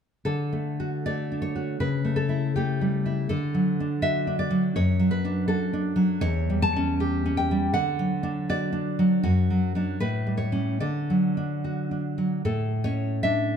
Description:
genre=romantic piece for solo classical guitar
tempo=71-83 BPM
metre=2/4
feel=rubato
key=D major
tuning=A4 = 440 Hz
part: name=nylon-string guitar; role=solo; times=0.2-13.6 s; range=E2 to A5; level=-23 LUFS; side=equal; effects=none
room=moderate concert hall reverb, RT60 1.8 s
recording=dark, warm production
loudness=-23 LUFS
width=side -7 dB against mid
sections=0.3-12.5 A section; 12.5-13.6 B section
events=none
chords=0.3 D; 1.8 A7/C#; 3.3 D; 4.8 D/F#; 6.2 A7/E; 7.7 D; 9.2 D/F#; 10.0 A9; 10.8 D; 12.5 A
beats=| 0.26 1.04 | 1.80 2.55 | 3.30 4.03 | 4.75 5.47 | 6.22 7.00 | 7.72 8.46 | 9.22 9.99 | 10.81 11.64 | 12.45 13.24

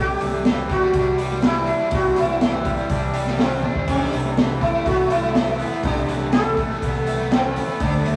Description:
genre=psychedelic rock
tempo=122 BPM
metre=4/4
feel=straight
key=A minor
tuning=A4 = 440 Hz
part: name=sitar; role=melody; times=0.0-8.2 s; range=C4 to A4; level=-25 LUFS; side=equal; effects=analog delay
part: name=string machine, cellos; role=sustained chords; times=0.0-8.2 s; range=G3 to F#5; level=-36 LUFS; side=equal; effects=none
part: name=overdriven semi-hollow guitar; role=riff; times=0.0-8.2 s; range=C3 to D4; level=-28 LUFS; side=equal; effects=harmonic tremolo
part: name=fuzz picked electric bass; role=bass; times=0.0-8.2 s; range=C2 to D2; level=-29 LUFS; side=equal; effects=overdrive
part: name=crunchy breakbeat drum kit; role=drums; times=0.2-8.2 s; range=hi-hat, kick drum, snare drum, splash cymbal, toms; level=-26 LUFS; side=equal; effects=none
part: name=congas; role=percussion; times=0.2-8.2 s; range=none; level=-39 LUFS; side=equal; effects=none
room=wet stone room reverb, RT60 1.1 s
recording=rough rehearsal-room recording, warm saturation, small room ambience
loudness=-21 LUFS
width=mono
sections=0.0-8.2 A section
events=drum fill 3.6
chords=0.0 Cadd9; 3.9 Amadd9/C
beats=0.46 0.95 1.44 | 1.93 2.42 2.91 3.40 | 3.89 4.38 4.87 5.36 | 5.85 6.34 6.83 7.32 | 7.81

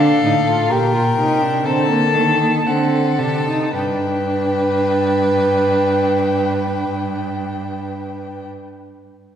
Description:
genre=classical, baroque-style fugue for string quartet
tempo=53-67 BPM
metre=4/4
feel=straight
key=unclear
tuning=A4 = 441 Hz
part: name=dark violin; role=melody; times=0.0-8.5 s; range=F5 to A5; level=-22 LUFS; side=left 5 dB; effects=none
part: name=dark violin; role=second line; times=0.0-8.5 s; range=A4 to B4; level=-21 LUFS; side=equal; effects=none
part: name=rich viola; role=accompaniment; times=0.0-8.5 s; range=A3 to G4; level=-23 LUFS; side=right 1 dB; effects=none
part: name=rich cello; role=bass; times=0.0-8.5 s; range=G2 to Eb3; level=-20 LUFS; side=right 2 dB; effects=none
room=wet concert hall reverb, RT60 2.1 s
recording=heard from further back in the room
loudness=-15 LUFS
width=side -9 dB against mid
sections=0.0-3.7 A section; 3.7-8.2 B section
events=slowing down 0.0-3.7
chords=0.0 Gm; 1.6 D7; 3.7 G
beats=0.69 1.65 2.66 | 3.74 4.87 6.00 7.12

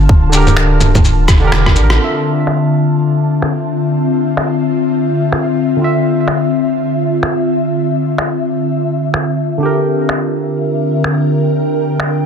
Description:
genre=future garage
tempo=126 BPM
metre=4/4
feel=swing 61% on 16ths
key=D minor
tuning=A4 = 441 Hz
part: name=ethereal airy pad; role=sustained chords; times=0.0-12.3 s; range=D3 to A5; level=-15 LUFS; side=left 3 dB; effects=ensemble chorus, built-in reverb, sidechain pumping
part: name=warm sub bass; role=bass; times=0.0-2.0 s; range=D1 to A1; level=-13 LUFS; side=equal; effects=sidechain pumping
part: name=drifting glass-harmonics texture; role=texture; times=0.0-2.0 s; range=F4 to F5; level=-32 LUFS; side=equal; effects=none
part: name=electronic kick drum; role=drums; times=0.1-1.7 s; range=none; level=-11 LUFS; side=equal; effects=none
part: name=barky tine electric piano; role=accompaniment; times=0.3-12.3 s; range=D3 to E5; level=-18 LUFS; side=right 3 dB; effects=lush chorus, sidechain pumping, digital delay
part: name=electronic shaker, bongos, finger snaps and rim click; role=drums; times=0.3-12.1 s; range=none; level=-16 LUFS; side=right 1 dB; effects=low-pass filter on perc, soft clipping on snare, low-pass filter on snare, low-pass filter on room
room=moderate digital room reverb, RT60 1.0 s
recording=dense, heavily limited modern master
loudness=-12 LUFS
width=side -7 dB against mid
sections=0.0-2.0 A section; 2.0-12.3 B section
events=drum fill 1.3-2.0; band accent 1.9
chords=0.0 Gm/D; 2.0 Dm9; 9.6 Gm/D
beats=| 0.09 0.57 1.05 1.52 | 2.00 2.48 2.95 3.43 | 3.90 4.38 4.86 5.33 | 5.81 6.28 6.76 7.24 | 7.71 8.19 8.66 9.14 | 9.62 10.09 10.57 11.05 | 11.52 12.00

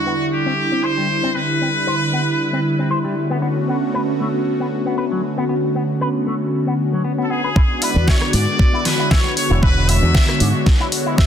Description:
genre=nu-disco, nu disco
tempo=116 BPM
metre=4/4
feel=swing 54% on 16ths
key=E mixolydian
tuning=A4 = 441 Hz
part: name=muted trumpet section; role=melody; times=0.0-3.2, 7.2-10.7 s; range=F#4 to E5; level=-22 LUFS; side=left 1 dB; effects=tape echo
part: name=warm analog pad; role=accompaniment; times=0.0-11.3 s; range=D3 to D5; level=-20 LUFS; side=equal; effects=chorus, phaser
part: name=electric guitar with an envelope filter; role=riff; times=0.1-11.2 s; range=F#3 to E5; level=-26 LUFS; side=left 2 dB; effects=wide subtle chorus, low-pass filter
part: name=electronic kick drum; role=drums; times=7.6-11.3 s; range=none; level=-14 LUFS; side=equal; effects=overdrive
part: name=pop drum kit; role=drums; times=7.8-11.3 s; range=hi-hat, rim click, snare drum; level=-21 LUFS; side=equal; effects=overdrive
part: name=fingered electric bass with an envelope filter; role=bass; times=8.0-10.5 s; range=E1 to G#2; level=-16 LUFS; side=equal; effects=none
room=light reverb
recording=dense, heavily limited modern master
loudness=-16 LUFS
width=side -9 dB against mid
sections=0.0-7.6 A section; 7.6-11.3 B section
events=drop 7.6-11.3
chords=0.0 Cmaj9; 3.2 Bm9; 7.6 E13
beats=0.32 0.84 | 1.35 1.87 2.39 2.90 | 3.42 3.94 4.46 4.97 | 5.49 6.01 6.53 7.04 | 7.56 8.08 8.60 9.11 | 9.63 10.15 10.66 11.18

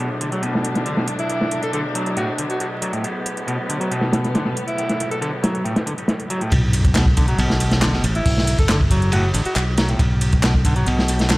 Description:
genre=breakbeat, breaks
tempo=138 BPM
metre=4/4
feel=straight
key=B minor pentatonic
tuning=A4 = 444 Hz
part: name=muted studio string section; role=sustained chords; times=0.0-6.5 s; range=B2 to D4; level=-28 LUFS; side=left 1 dB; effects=sidechain pumping
part: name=clean electric guitar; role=riff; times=0.0-11.4 s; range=A2 to F#3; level=-25 LUFS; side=equal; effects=overdrive, ping-pong delay
part: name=crunchy breakbeat drum kit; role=drums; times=0.0-11.4 s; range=hi-hat, kick drum, ride cymbal, snare drum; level=-21 LUFS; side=equal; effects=low-pass filter on kick, low-pass filter on cymbals, low-pass filter on hats, low-pass filter on snare, low-pass filter on room
part: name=garage drum kit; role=drums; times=0.2-11.4 s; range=handclaps, hi-hat, ride cymbal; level=-28 LUFS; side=equal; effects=none
part: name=warm alto saxophone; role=melody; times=1.2-5.3, 8.2-9.6 s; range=E4 to A4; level=-27 LUFS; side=equal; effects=small speaker sound, vintage 12-bit sampler grit, ping-pong delay
part: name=modern bright fingered electric bass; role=bass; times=6.5-11.4 s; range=F#1 to B1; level=-19 LUFS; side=equal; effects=none
part: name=sub drop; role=sound effects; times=6.5-8.3 s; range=none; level=-25 LUFS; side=equal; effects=none
room=small room reverb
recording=vinyl crackle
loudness=-17 LUFS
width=side -20 dB against mid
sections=0.0-6.5 A section; 6.5-11.4 B section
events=drop 6.5-11.4; impact 6.5-8.3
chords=0.0 Bm7; 6.5 B5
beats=0.00 0.43 0.87 | 1.30 1.74 2.17 2.61 | 3.04 3.48 3.91 4.34 | 4.78 5.21 5.65 6.08 | 6.52 6.95 7.39 7.82 | 8.26 8.69 9.13 9.56 | 10.00 10.43 10.87 11.30

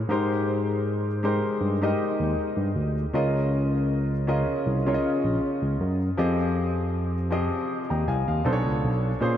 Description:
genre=R&B, neo-soul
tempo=79 BPM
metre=4/4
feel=swing 53% on 16ths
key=unclear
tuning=A4 = 440 Hz
part: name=warm baby grand piano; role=accompaniment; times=0.0-9.4 s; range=Bb2 to Bb5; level=-26 LUFS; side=left 1 dB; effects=lush chorus
part: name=barky tine electric piano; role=bass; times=0.1-9.4 s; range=Bb1 to Bb2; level=-26 LUFS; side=equal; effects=overdrive
room=wet huge ambient reverb, RT60 4.0 s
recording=dreamy mix soaked in reverb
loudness=-23 LUFS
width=side -10 dB against mid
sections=0.0-9.4 A section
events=none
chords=0.1 Abmaj9; 3.1 Db6; 6.2 Fm9; 8.4 Bm9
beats=| 0.09 0.85 1.61 2.37 | 3.13 3.88 4.64 5.40 | 6.16 6.92 7.68 8.44 | 9.20

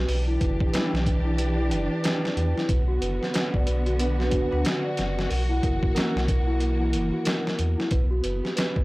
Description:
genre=trip hop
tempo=92 BPM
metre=4/4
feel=swing 60% on 16ths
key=B harmonic minor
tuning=A4 = 440 Hz
part: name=warm symphonic string section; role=sustained chords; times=0.0-8.8 s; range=D3 to G4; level=-30 LUFS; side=equal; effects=none
part: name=celesta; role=arpeggios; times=0.0-8.8 s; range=E4 to D5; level=-30 LUFS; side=equal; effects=tape echo
part: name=warm sub bass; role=bass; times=0.0-8.8 s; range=F#1 to E2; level=-25 LUFS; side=equal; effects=tube saturation
part: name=trip hop sampler-style drum kit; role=drums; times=0.1-8.8 s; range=hi-hat, kick drum, snare drum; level=-26 LUFS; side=equal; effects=overdrive
part: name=vibraphone with medium mallets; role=accompaniment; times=0.7-6.1 s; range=G3 to B4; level=-30 LUFS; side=equal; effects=harmonic tremolo, tape echo
room=studio ambience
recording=dry, gritty hardware recording, transformer saturation, vinyl crackle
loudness=-22 LUFS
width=side -21 dB against mid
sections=0.0-8.8 A section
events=none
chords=0.1 Em7; 2.7 Bm; 5.3 F#7; 7.9 Gmaj7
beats=| 0.09 0.74 1.39 2.04 | 2.70 3.35 4.00 4.65 | 5.31 5.96 6.61 7.26 | 7.91 8.57

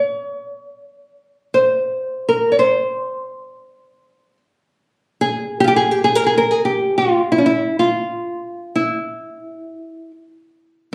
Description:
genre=Persian modal ensemble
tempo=free time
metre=none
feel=none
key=C dastgah homayun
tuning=A4 = 438 Hz
part: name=nylon-string guitar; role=solo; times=0.0-10.1 s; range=Db4+45c to Db5+45c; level=-19 LUFS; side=equal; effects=none
room=moderate studio ambience, RT60 0.5 s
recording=recorded on a phone in the room, club reverb, compression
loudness=-18 LUFS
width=mono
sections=0.0-10.9 A section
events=none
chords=none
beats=free time

